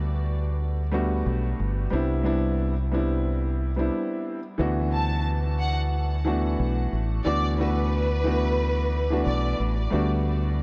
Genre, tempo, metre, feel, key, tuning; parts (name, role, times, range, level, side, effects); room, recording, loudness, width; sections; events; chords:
hip hop, boom-bap hip-hop; 90 BPM; 4/4; swing 56% on 16ths; D mixolydian; A4 = 440 Hz
dark concert grand piano; accompaniment; 0.0-10.6 s; E3 to F#4; -30 LUFS; equal; high-pass filter, low-pass filter
deep dub fingered electric bass; bass; 0.0-10.6 s; G1 to D2; -28 LUFS; equal
warm studio violin section; melody; 4.9-9.6 s; B4 to A5; -33 LUFS; equal; high-pass filter, low-pass filter, delay
moderate huge ambient reverb, RT60 8.4 s; dreamy mix soaked in reverb; -25 LUFS; mono
0.0-4.6 A section; 4.6-10.6 B section
break 3.9-4.6
0.0 Gmaj7/D; 1.9 Cmaj7; 4.6 D6; 9.9 Gmaj7/D